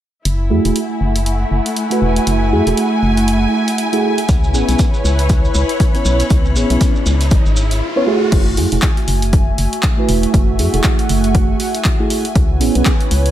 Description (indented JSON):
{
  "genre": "deep house",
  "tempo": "119 BPM",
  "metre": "4/4",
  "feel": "swing 58% on 16ths",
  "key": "F# minor",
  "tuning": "A4 = 439 Hz",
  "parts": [
    { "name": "airy breathy pad", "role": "sustained chords", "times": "0.3-13.3 s", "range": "A3 to G#5", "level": "-22 LUFS", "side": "right 2 dB", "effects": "chorus, sidechain pumping" },
    { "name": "organ-like FM bass", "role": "bass", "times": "0.3-13.3 s", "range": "E1 to F#2", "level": "-16 LUFS", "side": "equal", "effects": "sidechain pumping" },
    { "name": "punchy analog drum machine", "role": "drums", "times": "0.3-13.3 s", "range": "crash cymbal, handclaps, hi-hat", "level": "-23 LUFS", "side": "equal", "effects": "overdrive, studio reverb" },
    { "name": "rich studio string section", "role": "texture", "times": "0.3-13.3 s", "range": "A3 to B5", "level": "-24 LUFS", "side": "left 1 dB", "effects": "sidechain pumping" },
    { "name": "mellow FM electric piano", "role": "stabs", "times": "0.5-12.9 s", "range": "A3 to C#5", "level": "-19 LUFS", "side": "right 2 dB", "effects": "chorus, phaser, low-pass filter, analog delay" },
    { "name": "electronic kick drum", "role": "drums", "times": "4.3-13.0 s", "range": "none", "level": "-15 LUFS", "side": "equal", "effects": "overdrive, studio reverb" },
    { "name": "maracas", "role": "percussion", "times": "4.3-7.8 s", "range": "none", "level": "-27 LUFS", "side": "right 2 dB", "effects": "none" },
    { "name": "riser", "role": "sound effects", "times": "5.9-8.3 s", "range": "none", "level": "-26 LUFS", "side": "equal", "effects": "none" }
  ],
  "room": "light reverb, digital ambience",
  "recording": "none",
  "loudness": "-12 LUFS",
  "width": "side -12 dB against mid",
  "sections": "0.3-8.3 A section; 8.3-13.3 B section",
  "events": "filter sweep on FM bass 0.3-8.3; filter sweep on FM electric piano 0.3-8.3; riser 5.9-8.3",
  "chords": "0.3 F#m9; 4.3 C#m7; 8.3 F#m9; 12.4 C#m7"
}